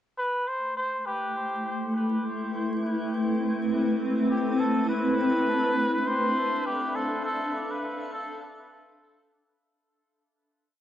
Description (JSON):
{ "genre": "ambient dub", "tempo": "102 BPM", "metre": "4/4", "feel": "swing 55% on 16ths", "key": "A minor", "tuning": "A4 = 439 Hz", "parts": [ { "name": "trumpet with cup mute", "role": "melody", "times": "0.2-9.3 s", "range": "G4 to C5", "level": "-29 LUFS", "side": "equal", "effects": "dub echo" }, { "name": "granular cloud pad", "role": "sustained chords", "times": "1.3-9.6 s", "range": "A3 to F5", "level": "-26 LUFS", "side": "equal", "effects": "built-in reverb, vintage 12-bit sampler grit" } ], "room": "moderate echo chamber reverb, RT60 2.2 s", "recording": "dark, warm production, vinyl crackle", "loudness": "-25 LUFS", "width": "side -11 dB against mid", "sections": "0.2-9.6 groove", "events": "fade-out 6.5-9.6", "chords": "0.2 Am9; 4.9 Dm9" }